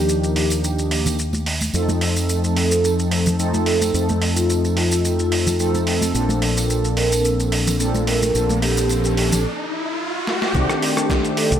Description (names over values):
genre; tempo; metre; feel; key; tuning
nu-disco, nu disco; 109 BPM; 4/4; swing 54% on 16ths; unclear; A4 = 440 Hz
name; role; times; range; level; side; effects
vibraphone with soft mallets; melody; 0.0-11.6 s; F4 to Bb4; -24 LUFS; equal; vintage 12-bit sampler grit, digital delay
mellow synth brass; accompaniment; 0.0-11.6 s; Eb3 to A4; -22 LUFS; equal; chorus
fingered electric bass with an envelope filter; bass; 0.0-11.6 s; Bb1 to F2; -22 LUFS; equal; sidechain pumping
dusty soul sampler-style drum kit; drums; 0.1-11.6 s; hi-hat, rim click, shaker, snare drum; -25 LUFS; right 1 dB; overdrive
tambourine and congas; percussion; 0.1-9.4 s; none; -27 LUFS; right 1 dB; none
riser; sound effects; 7.6-10.5 s; none; -27 LUFS; equal; none
electronic kick drum; drums; 10.5-11.2 s; none; -23 LUFS; equal; overdrive
room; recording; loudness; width
light reverb; none; -17 LUFS; side -9 dB against mid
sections
0.0-10.5 A section; 10.5-11.6 B section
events
riser 7.6-10.5; break 9.4-10.5; drum fill 10.3; drop 10.5-11.6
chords
0.0 Ebmaj9; 1.7 F7; 6.1 Bbmaj9; 10.5 Cm69